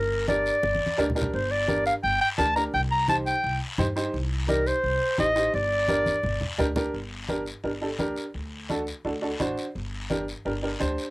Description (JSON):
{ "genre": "latin, cumbia", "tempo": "171 BPM", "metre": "4/4", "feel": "straight", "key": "G minor", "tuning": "A4 = 440 Hz", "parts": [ { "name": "warm clarinet", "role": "melody", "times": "0.0-6.6 s", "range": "Bb4 to Bb5", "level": "-24 LUFS", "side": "equal", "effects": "cassette tape" }, { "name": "upright bass", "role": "bass", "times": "0.0-10.9 s", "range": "G1 to G2", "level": "-32 LUFS", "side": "equal", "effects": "none" }, { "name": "clear upright piano", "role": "accompaniment", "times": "0.3-11.1 s", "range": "D4 to D5", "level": "-28 LUFS", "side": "right 1 dB", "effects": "none" }, { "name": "congas", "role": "percussion", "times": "0.3-11.0 s", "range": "none", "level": "-32 LUFS", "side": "left 1 dB", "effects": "none" }, { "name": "guiro", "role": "percussion", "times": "0.3-11.1 s", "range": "none", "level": "-38 LUFS", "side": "left 3 dB", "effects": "none" } ], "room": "light reverb", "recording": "home recording on cassette", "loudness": "-24 LUFS", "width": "side -23 dB against mid", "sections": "0.0-6.9 A section; 6.9-11.1 B section", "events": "drum fill 0.6-1.3, 6.1-6.9", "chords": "0.0 Gm; 2.7 Cm; 5.5 Gm; 8.3 D7; 9.8 Gm" }